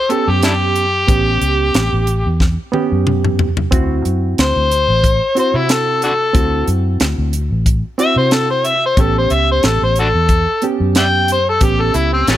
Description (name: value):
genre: straight-eighth soul blues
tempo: 91 BPM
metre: 4/4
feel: swing 55% on 16ths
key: unclear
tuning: A4 = 440 Hz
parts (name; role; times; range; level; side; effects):
- overdriven harmonica; melody; 0.0-12.4 s; F#3 to G5; -15 LUFS; left 2 dB; none
- reed electric piano; accompaniment; 0.1-12.4 s; B3 to G4; -21 LUFS; right 4 dB; spring reverb
- tight funk drum kit; drums; 0.1-12.4 s; hi-hat, kick drum, snare drum, toms; -17 LUFS; equal; none
- vintage muted fingered electric bass; bass; 0.3-12.4 s; A1 to C3; -18 LUFS; equal; none
room: little or no reverb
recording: none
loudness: -12 LUFS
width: side -12 dB against mid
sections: 0.0-12.4 A section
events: harmonica solo 0.0-12.4; drum fill 2.4-3.7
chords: 0.0 A9; 3.7 D9; 9.0 A9